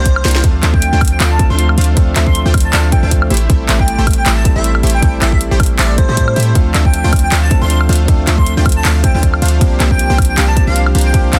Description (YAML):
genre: future bass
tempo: 157 BPM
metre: 4/4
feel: swing 56% on 16ths, half-time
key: D minor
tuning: A4 = 443 Hz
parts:
  - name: airy dreamy lead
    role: melody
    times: 0.0-11.4 s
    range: C5 to C6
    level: -23 LUFS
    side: equal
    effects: chorus, sidechain pumping, digital delay
  - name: supersaw stab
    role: riff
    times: 0.0-11.4 s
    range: A3 to G5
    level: -24 LUFS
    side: equal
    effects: sidechain pumping, digital delay
  - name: warm 808-style bass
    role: bass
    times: 0.0-11.4 s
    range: A1 to A2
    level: -16 LUFS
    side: equal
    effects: sidechain pumping
  - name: electronic kick drum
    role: drums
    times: 0.1-11.2 s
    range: none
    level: -15 LUFS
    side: equal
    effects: none
  - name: trap drum kit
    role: drums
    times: 0.1-11.4 s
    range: handclaps, hi-hat, snare drum, woodblock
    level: -20 LUFS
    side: equal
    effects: none
  - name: tine electric piano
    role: accompaniment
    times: 0.4-11.4 s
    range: F3 to A4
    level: -24 LUFS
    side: equal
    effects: vintage 12-bit sampler grit, sidechain pumping, digital delay
room: little or no reverb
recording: dense, heavily limited modern master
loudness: -12 LUFS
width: mono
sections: 0.0-11.4 A section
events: drum fill 0.2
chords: 0.4 Dm7; 3.3 Am7; 6.6 Dm7; 9.6 C9sus4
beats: 0.06 | 0.44 0.82 1.20 1.58 | 1.97 2.35 2.73 3.11 | 3.50 3.88 4.26 4.64 | 5.03 5.41 5.79 6.17 | 6.55 6.94 7.32 7.70 | 8.08 8.46 8.85 9.23 | 9.61 9.99 10.38 10.76 | 11.14